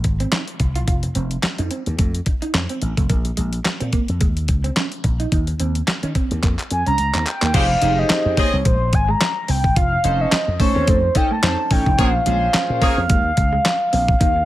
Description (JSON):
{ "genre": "early-eighties boogie funk", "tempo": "108 BPM", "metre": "4/4", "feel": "swing 56% on 16ths", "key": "F minor", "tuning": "A4 = 441 Hz", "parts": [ { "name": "electric guitar at the edge of break-up", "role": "riff", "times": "0.0-14.4 s", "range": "Ab3 to F4", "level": "-28 LUFS", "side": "right 4 dB", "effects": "lush chorus" }, { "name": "slap bass with an envelope filter", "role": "bass", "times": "0.0-14.4 s", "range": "F1 to Eb3", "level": "-21 LUFS", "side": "equal", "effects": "none" }, { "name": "detuned 8-bit digital drum machine", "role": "drums", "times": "0.0-14.4 s", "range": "crash cymbal, handclaps, hi-hat, kick drum, snare drum", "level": "-20 LUFS", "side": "equal", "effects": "none" }, { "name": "mellow horn-like synth lead", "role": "melody", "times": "6.7-14.4 s", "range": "C5 to Bb5", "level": "-20 LUFS", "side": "equal", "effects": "chorus, slapback echo" }, { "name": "warm horn section", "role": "second line", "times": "7.5-8.6, 12.0-13.0 s", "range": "Ab3 to Eb5", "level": "-25 LUFS", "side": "left 1 dB", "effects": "none" }, { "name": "chorused polysynth", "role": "accompaniment", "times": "7.5-12.9 s", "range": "Db4 to Eb5", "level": "-25 LUFS", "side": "left 1 dB", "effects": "none" } ], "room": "light reverb", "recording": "none", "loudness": "-16 LUFS", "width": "side -15 dB against mid", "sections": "0.0-7.5 A section; 7.5-14.4 B section", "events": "drum fill 6.4-7.5", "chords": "0.0 Fm7; 0.9 F7; 3.1 Bbm; 5.3 N.C.; 7.5 Fm9; 9.8 F7b13; 12.0 Bbm7" }